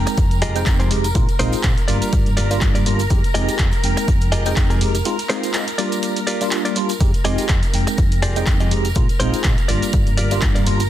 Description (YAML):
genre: filtered disco house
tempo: 123 BPM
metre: 4/4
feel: swing 56% on 16ths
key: F dorian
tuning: A4 = 440 Hz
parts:
  - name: mellow tine electric piano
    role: accompaniment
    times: 0.0-10.8 s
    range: G3 to G5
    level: -23 LUFS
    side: right 1 dB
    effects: overdrive, medium stereo tremolo, phaser, sidechain pumping
  - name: string machine, full ensemble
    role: sustained chords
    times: 0.0-10.9 s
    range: Bb4 to Bb5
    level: -28 LUFS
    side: equal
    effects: ensemble chorus, sidechain pumping
  - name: hollow-body short-scale fingered electric bass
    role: bass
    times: 0.0-10.9 s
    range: F1 to Bb2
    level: -21 LUFS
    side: equal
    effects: sidechain pumping
  - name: direct-recorded clean electric guitar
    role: riff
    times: 0.1-10.8 s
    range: Eb4 to Eb5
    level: -26 LUFS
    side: left 1 dB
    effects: vintage 12-bit sampler grit, sidechain pumping
  - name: punchy analog drum machine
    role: drums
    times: 0.1-10.9 s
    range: handclaps, hi-hat, shaker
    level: -26 LUFS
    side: right 1 dB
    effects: sidechain pumping on hats, studio reverb, sidechain pumping on perc
  - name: tambourine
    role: percussion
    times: 0.1-10.9 s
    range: none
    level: -35 LUFS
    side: right 5 dB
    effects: sidechain pumping on perc
  - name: electronic kick drum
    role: drums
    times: 0.2-10.5 s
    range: none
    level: -19 LUFS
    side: equal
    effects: studio reverb
room: little or no reverb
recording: dense, heavily limited modern master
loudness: -16 LUFS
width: side -12 dB against mid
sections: 0.0-10.9 A section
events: break 5.1-7.0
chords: 0.0 Fm9; 1.2 Bb9sus4; 1.9 Gm7; 3.1 Fm9; 5.1 Bb9sus4; 5.8 Gm7; 7.0 Fm9; 9.0 Bb9sus4; 9.7 Gm7